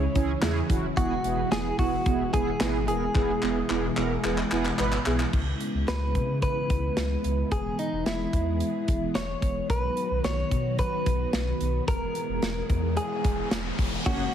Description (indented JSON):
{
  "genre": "synth-pop",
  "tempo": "110 BPM",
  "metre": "4/4",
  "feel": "straight",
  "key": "unclear",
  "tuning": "A4 = 440 Hz",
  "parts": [
    { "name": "direct-recorded clean electric guitar", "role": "melody", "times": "0.0-14.3 s", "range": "D#4 to C#5", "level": "-30 LUFS", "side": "equal", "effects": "analog delay" },
    { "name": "mellow synth brass", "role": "accompaniment", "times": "0.0-5.2, 14.1-14.2 s", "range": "A#3 to B4", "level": "-29 LUFS", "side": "right 4 dB", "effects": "chorus" },
    { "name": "string machine, cellos", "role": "sustained chords", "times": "0.0-14.3 s", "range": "B2 to G#4", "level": "-32 LUFS", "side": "equal", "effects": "ensemble chorus" },
    { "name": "sub bass with octave", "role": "bass", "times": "0.0-14.3 s", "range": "D#1 to C#3", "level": "-31 LUFS", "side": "equal", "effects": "none" },
    { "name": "modern studio drum kit", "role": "drums", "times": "0.2-14.2 s", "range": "crash cymbal, handclaps, hi-hat, kick drum, snare drum", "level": "-29 LUFS", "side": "equal", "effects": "none" },
    { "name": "riser", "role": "sound effects", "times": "12.6-14.1 s", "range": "none", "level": "-37 LUFS", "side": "equal", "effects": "none" }
  ],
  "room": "moderate recital hall reverb, RT60 1.4 s, studio reverb",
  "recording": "heavily compressed radio sound",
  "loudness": "-24 LUFS",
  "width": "side -9 dB against mid",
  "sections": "0.0-5.3 A section; 5.3-14.1 B section",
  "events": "drum fill 3.2-5.3; riser 12.6-14.1",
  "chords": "0.0 C#m; 1.0 E; 5.3 C#m7; 7.5 E; 9.7 B; 11.9 E",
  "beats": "0.42 | 0.97 1.52 2.06 2.61 | 3.15 3.70 4.24 4.79 | 5.33 5.88 6.42 6.97 | 7.52 8.06 8.61 9.15 | 9.70 10.24 10.79 11.33 | 11.88 12.43 12.97 13.52 | 14.06"
}